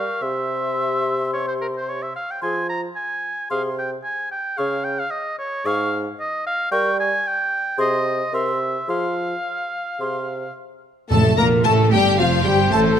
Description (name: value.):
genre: quick classical-period movement for symphony orchestra.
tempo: 111 BPM.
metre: 4/4.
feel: straight.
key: F minor.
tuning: A4 = 440 Hz.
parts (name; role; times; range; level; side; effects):
dark clarinet; second line; 0.0-13.0 s; F4 to Bb4; -26 LUFS; left 4 dB; none.
mellow hollow silver concert flute; second line; 0.0-12.8 s; F5 to Db6; -28 LUFS; left 2 dB; none.
warm oboe; second line; 0.0-13.0 s; Bb4 to Bb5; -24 LUFS; right 1 dB; none.
mellow bassoon; accompaniment; 0.0-10.5 s; Ab2 to G3; -27 LUFS; right 2 dB; none.
rich studio violin section; melody; 11.1-12.8 s; F5 to Bb5; -22 LUFS; left 3 dB; none.
warm studio violin section; second line; 11.1-13.0 s; F4 to Bb4; -24 LUFS; left 2 dB; none.
rich studio viola section; accompaniment; 11.1-13.0 s; F3 to Bb3; -25 LUFS; equal; none.
mellow French horn section; sustained chords; 11.1-12.8 s; F3 to Bb3; -24 LUFS; left 3 dB; none.
dark studio double bass section; bass; 11.1-13.0 s; F1 to Bb1; -20 LUFS; right 4 dB; none.
rich studio cello section; bass; 11.1-13.0 s; F2 to Bb2; -23 LUFS; right 3 dB; none.
timpani; percussion; 11.1-11.9 s; F2; -23 LUFS; left 1 dB; none.
room: light reverb.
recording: close, detailed microphones.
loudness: -19 LUFS.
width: side -9 dB against mid.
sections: 0.0-11.1 A section; 11.1-13.0 A section.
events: none.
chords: 0.2 C; 2.4 Fm; 4.6 Db5; 6.7 G(b5, no3); 7.8 Ab/C; 8.9 F5; 11.1 F.